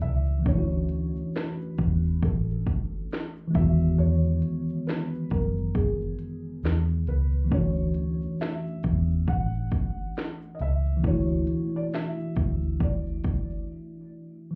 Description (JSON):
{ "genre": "lo-fi hip hop", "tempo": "68 BPM", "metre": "4/4", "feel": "swing 59% on 16ths", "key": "D major", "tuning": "A4 = 440 Hz", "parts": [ { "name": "felt-muted upright piano", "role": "melody", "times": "0.0-13.7 s", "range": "G#4 to F#5", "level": "-41 LUFS", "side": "equal", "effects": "plate reverb" }, { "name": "mellow tine electric piano", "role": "accompaniment", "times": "0.0-14.6 s", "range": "D#3 to F#4", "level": "-32 LUFS", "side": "equal", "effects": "cassette tape" }, { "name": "vintage muted fingered electric bass", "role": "bass", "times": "0.0-13.7 s", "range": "A1 to F#2", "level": "-28 LUFS", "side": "equal", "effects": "none" }, { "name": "techno drum kit", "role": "drums", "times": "0.0-13.7 s", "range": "hi-hat, kick drum, shaker, snare drum", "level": "-31 LUFS", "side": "equal", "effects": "overdrive" } ], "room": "light reverb", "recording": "heard muffled through a wall, club reverb, EQ", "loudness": "-27 LUFS", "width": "mono", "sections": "0.5-14.6 A section", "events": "break 0.0-0.5, 13.7-14.6", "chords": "0.5 Dmaj9; 3.5 Emaj9; 7.5 Dmaj9" }